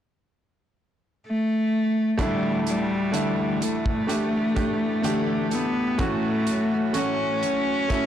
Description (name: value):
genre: pop ballad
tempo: 63 BPM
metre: 4/4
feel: straight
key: D major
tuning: A4 = 440 Hz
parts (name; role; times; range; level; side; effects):
- warm cello; melody; 1.3-8.1 s; G3 to C#4; -24 LUFS; left 1 dB; none
- bright upright piano; accompaniment; 2.2-8.1 s; D2 to G4; -27 LUFS; right 3 dB; none
- picked steel-string acoustic guitar; arpeggios; 2.2-8.1 s; A2 to A4; -31 LUFS; left 4 dB; none
- modern studio drum kit; drums; 2.2-8.1 s; hi-hat, kick drum; -30 LUFS; equal; none
room: moderate lush hall reverb, RT60 2.9 s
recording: blown-out, overdriven recording, overdrive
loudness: -22 LUFS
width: side -10 dB against mid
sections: 0.0-2.2 A section; 2.2-8.1 B section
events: none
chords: 0.0 N.C.; 2.2 Dsus2; 6.0 A6